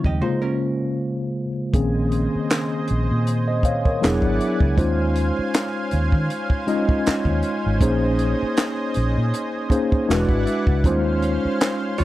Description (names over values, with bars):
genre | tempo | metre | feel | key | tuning
R&B, neo-soul | 79 BPM | 4/4 | swing 56% on 16ths | Bb minor | A4 = 439 Hz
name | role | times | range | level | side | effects
hollow-body jazz guitar | second line | 0.0-1.5, 12.0 s | Db4 to Eb5 | -29 LUFS | right 5 dB | none
mellow tine electric piano | accompaniment | 0.0-12.0 s | C3 to F5 | -22 LUFS | left 1 dB | medium stereo tremolo
compact cocktail drum kit | drums | 0.0-12.0 s | handclaps, hi-hat, kick drum, snare drum | -21 LUFS | equal | none
vintage muted fingered electric bass | bass | 0.1-12.0 s | E1 to Eb3 | -22 LUFS | equal | none
lush unison pad | sustained chords | 1.7-12.0 s | Db3 to Ab5 | -28 LUFS | right 1 dB | chorus
room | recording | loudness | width
little or no reverb | dry, close 1970s-style studio recording | -19 LUFS | side -15 dB against mid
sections
0.0-1.7 A section; 1.7-12.0 B section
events
break 0.2-1.7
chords
0.2 Bbm9; 1.7 Bbm11; 4.0 E9; 4.8 Eb13sus4; 7.8 Bbm11; 10.1 E9; 10.8 Eb13sus4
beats
0.21 0.97 | 1.73 2.49 3.25 4.01 | 4.77 5.53 6.29 7.04 | 7.80 8.56 9.32 10.08 | 10.84 11.60